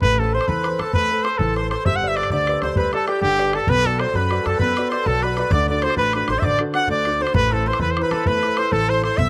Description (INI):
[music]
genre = celtic folk, Celtic slide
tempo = 131 BPM (dotted quarters)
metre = 12/8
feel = straight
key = A dorian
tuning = A4 = 440 Hz
[part]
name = warm trumpet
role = melody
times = 0.0-9.3 s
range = G4 to F#5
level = -23 LUFS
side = equal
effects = none
[part]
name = accordion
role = second line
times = 0.0-9.3 s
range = G4 to F#5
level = -32 LUFS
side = equal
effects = none
[part]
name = cimbalom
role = second line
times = 0.0-9.3 s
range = G4 to F#5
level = -30 LUFS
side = equal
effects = slapback echo
[part]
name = dark concert grand piano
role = accompaniment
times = 0.0-9.3 s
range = D3 to D5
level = -28 LUFS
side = equal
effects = none
[part]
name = upright bass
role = bass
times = 0.0-9.3 s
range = G1 to F#2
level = -28 LUFS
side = equal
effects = none
[part]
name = bodhran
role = percussion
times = 0.0-9.3 s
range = none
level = -28 LUFS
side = equal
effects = none
[sound]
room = little or no reverb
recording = recorded outdoors, with no room sound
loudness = -20 LUFS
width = mono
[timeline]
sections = 0.0-9.3 A section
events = none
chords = 0.0 Amadd9; 1.8 G; 3.7 Bm; 5.5 D; 7.3 Am